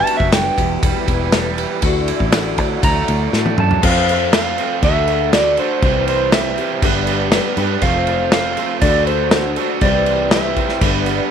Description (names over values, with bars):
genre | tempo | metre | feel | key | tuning
folk rock and heartland rock | 120 BPM | 4/4 | straight | unclear | A4 = 441 Hz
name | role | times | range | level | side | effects
clean lap steel guitar | melody | 0.0-11.3 s | C5 to Bb5 | -20 LUFS | right 2 dB | none
picked steel-string acoustic guitar | accompaniment | 0.0-11.3 s | E2 to G4 | -23 LUFS | left 13 dB | none
tonewheel organ | sustained chords | 0.0-11.3 s | C4 to D5 | -28 LUFS | equal | chorus vibrato, stopped rotary speaker
crunchy overdriven guitar | riff | 0.0-11.3 s | E2 to C5 | -23 LUFS | right 14 dB | none
natural country drum kit | drums | 0.1-11.2 s | crash cymbal, kick drum, ride cymbal, snare drum, toms | -18 LUFS | equal | none
fingered electric bass | bass | 0.2-11.2 s | E1 to A2 | -22 LUFS | equal | none
room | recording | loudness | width
moderate spring reverb, RT60 1.6 s | 1960s-style stereo with parts hard left and right | -14 LUFS | side -8 dB against mid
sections
0.0-3.8 A section; 3.8-11.3 B section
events
electric slide guitar solo 0.0-3.8; drum fill 3.3-3.8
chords
0.0 Gmaj7; 0.6 Em; 1.8 Dadd9; 3.8 F; 4.8 D; 5.8 C; 6.8 G; 7.8 F; 8.8 D; 9.8 C